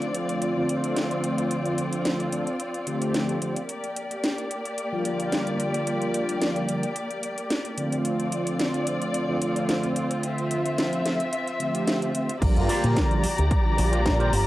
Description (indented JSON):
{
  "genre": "nu-disco, nu disco",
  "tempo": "110 BPM",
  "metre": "4/4",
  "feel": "swing 54% on 16ths",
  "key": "D minor",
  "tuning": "A4 = 439 Hz",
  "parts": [
    { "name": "mellow synth brass", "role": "accompaniment", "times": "0.0-14.5 s", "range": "D3 to Bb4", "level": "-27 LUFS", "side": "equal", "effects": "chorus, sidechain pumping, cassette tape, analog delay" },
    { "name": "muted studio string section", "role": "sustained chords", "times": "0.0-14.5 s", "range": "Bb3 to Bb5", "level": "-28 LUFS", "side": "left 1 dB", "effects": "sidechain pumping, cassette tape" },
    { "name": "house drum kit", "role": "drums", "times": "0.0-14.4 s", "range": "crash cymbal, hi-hat, snare drum", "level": "-30 LUFS", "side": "equal", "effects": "overdrive, cassette tape" },
    { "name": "fingered electric bass with an envelope filter", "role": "bass", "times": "12.4-14.5 s", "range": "G1 to Bb2", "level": "-23 LUFS", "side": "equal", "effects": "none" },
    { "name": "electronic kick drum", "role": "drums", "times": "12.4-14.2 s", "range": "none", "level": "-24 LUFS", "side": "equal", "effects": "overdrive, cassette tape" },
    { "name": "electric guitar with an envelope filter", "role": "riff", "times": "12.7-14.3 s", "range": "F4 to D5", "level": "-32 LUFS", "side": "right 1 dB", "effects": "lush chorus, cassette tape" }
  ],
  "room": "moderate small room reverb, RT60 0.5 s",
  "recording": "home recording on cassette",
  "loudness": "-23 LUFS",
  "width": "side -16 dB against mid",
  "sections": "0.0-12.4 A section; 12.4-14.5 B section",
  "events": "drop 12.4-14.5",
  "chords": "0.0 Dm7; 3.7 Bb6; 8.1 Dm7; 12.4 Bb6"
}